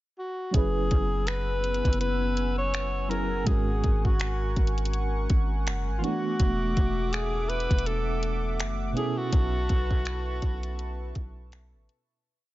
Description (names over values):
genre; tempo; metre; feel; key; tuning
contemporary R&B; 82 BPM; 4/4; swing 58% on 16ths; unclear; A4 = 441 Hz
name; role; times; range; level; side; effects
breathy alto saxophone; melody; 0.2-11.5 s; E#4 to C#5; -32 LUFS; left 1 dB; digital delay
mellow FM electric piano; accompaniment; 0.5-12.3 s; G#2 to B4; -34 LUFS; right 2 dB; chorus, tremolo
warm analog pad; sustained chords; 1.0-12.2 s; A3 to E6; -36 LUFS; left 2 dB; chorus
warm 808-style bass; bass; 0.5-11.9 s; E1 to B1; -29 LUFS; equal; none
smooth R&B drum kit; drums; 0.5-12.1 s; finger snaps, hi-hat, kick drum; -26 LUFS; equal; vintage 12-bit sampler grit
room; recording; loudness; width
little or no reverb; nothing above 7.6 kHz; -24 LUFS; side -17 dB against mid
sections
0.0-0.5 pickup bar; 0.5-12.2 verse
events
fade-out 9.3-12.2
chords
0.0 N.C.; 0.5 F#9sus4; 3.5 G#9sus4; 6.0 E9sus4; 9.0 B9sus4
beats
| 0.54 1.27 2.01 2.74 | 3.47 4.20 4.93 5.67 | 6.40 7.13 7.86 8.59 | 9.32 10.05 10.79 11.52